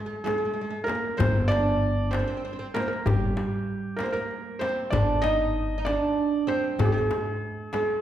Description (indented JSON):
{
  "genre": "Arabic maqam ensemble",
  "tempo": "64 BPM (dotted quarters)",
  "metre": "6/8",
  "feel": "straight",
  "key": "G maqam bayati",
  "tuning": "A4 = 439 Hz",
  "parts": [
    { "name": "felt-muted upright piano", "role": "melody", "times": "0.0-8.0 s", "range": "G4 to Eb5", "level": "-28 LUFS", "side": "right 1 dB", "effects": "none" },
    { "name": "oud", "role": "second line", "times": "0.0-8.0 s", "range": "G3 to Eb4", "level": "-30 LUFS", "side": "right 4 dB", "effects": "none" },
    { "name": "darbuka", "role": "percussion", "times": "0.3-7.9 s", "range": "none", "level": "-31 LUFS", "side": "left 1 dB", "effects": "none" },
    { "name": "frame drum", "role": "percussion", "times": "0.3-7.9 s", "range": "none", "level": "-33 LUFS", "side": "left 4 dB", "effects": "none" },
    { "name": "upright bass", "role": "bass", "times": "1.2-7.1 s", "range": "G1", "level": "-29 LUFS", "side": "equal", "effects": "none" }
  ],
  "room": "wet recital hall reverb, RT60 1.4 s",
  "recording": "heard from further back in the room",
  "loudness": "-24 LUFS",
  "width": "side -11 dB against mid",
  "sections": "0.0-8.0 A section",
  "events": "none",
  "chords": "none",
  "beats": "0.26 | 1.19 2.13 | 3.06 4.00 | 4.93 5.87 | 6.80 7.74"
}